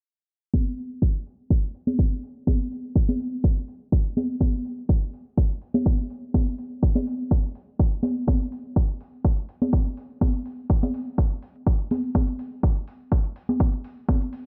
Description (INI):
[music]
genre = deep house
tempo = 124 BPM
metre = 4/4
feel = swing 54% on 16ths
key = none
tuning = none
[part]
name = electronic kick drum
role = drums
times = 0.5-14.2 s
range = none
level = -23 LUFS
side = equal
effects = none
[part]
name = congas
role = percussion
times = 0.5-14.2 s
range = none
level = -30 LUFS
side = equal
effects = none
[part]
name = electronic hi-hat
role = drums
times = 0.8-14.4 s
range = none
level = -64 LUFS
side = equal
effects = none
[sound]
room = digital ambience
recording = low-pass filter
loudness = -25 LUFS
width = mono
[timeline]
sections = 0.5-14.5 A section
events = filter sweep 0.5-14.5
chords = none